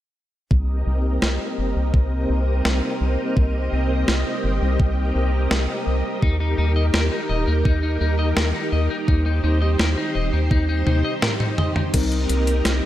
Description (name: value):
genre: synthwave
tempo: 84 BPM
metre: 4/4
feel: straight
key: C minor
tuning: A4 = 441 Hz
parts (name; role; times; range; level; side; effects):
- string machine, full ensemble; sustained chords; 0.5-12.9 s; C4 to Eb5; -25 LUFS; equal; ensemble chorus, sidechain pumping
- round analog bass; bass; 0.5-12.8 s; Eb1 to Eb2; -21 LUFS; equal; none
- electronic kick drum; drums; 0.5-12.1 s; none; -19 LUFS; equal; none
- clean 12-bit digital drum machine; drums; 1.2-12.8 s; crash cymbal, hi-hat, snare drum, toms; -24 LUFS; equal; gated reverb
- electric guitar at the edge of break-up; riff; 6.2-11.8 s; Eb4 to Eb5; -29 LUFS; left 4 dB; wide subtle chorus, digital delay
- FM electric piano with soft pad layer; stabs; 11.9-12.9 s; G3 to Bb4; -25 LUFS; left 3 dB; chorus, digital delay
room: light reverb, digital ambience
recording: none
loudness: -18 LUFS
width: side -13 dB against mid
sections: 0.5-11.9 A section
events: filter sweep on analog synth bass 0.5-11.9; filter sweep on string machine 0.5-11.9; drum fill 10.9-11.9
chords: 0.5 Cm7; 6.2 Eb; 11.9 Cm7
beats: | 0.51 1.22 1.94 2.65 | 3.37 4.08 4.80 5.51 | 6.22 6.94 7.65 8.37 | 9.08 9.80 10.51 11.22 | 11.94 12.65